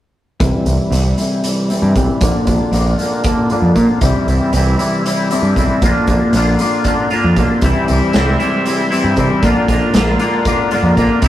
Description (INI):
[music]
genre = psychedelic rock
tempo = 233 BPM (eighths)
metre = 7/8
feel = straight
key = unclear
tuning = A4 = 439 Hz
[part]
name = twangy electric guitar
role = riff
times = 0.4-11.3 s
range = Bb2 to F4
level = -15 LUFS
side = left 1 dB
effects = rotary speaker, low-pass filter
[part]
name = growling picked electric bass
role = bass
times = 0.4-11.3 s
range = Bb1 to C3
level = -15 LUFS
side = right 1 dB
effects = overdrive
[part]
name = raw garage drum kit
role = drums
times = 0.4-11.3 s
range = hi-hat, kick drum, snare drum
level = -19 LUFS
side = equal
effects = none
[part]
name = warm studio string section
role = sustained chords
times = 7.6-11.3 s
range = F4 to C6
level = -24 LUFS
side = left 1 dB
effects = low-pass filter
[sound]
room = moderate small room reverb, RT60 0.6 s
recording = rough rehearsal-room recording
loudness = -12 LUFS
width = side -13 dB against mid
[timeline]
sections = 0.4-11.3 A section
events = filter sweep 0.4-11.3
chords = 0.4 C; 2.2 Bb; 4.0 C; 5.8 Bb; 7.6 C; 9.4 Bb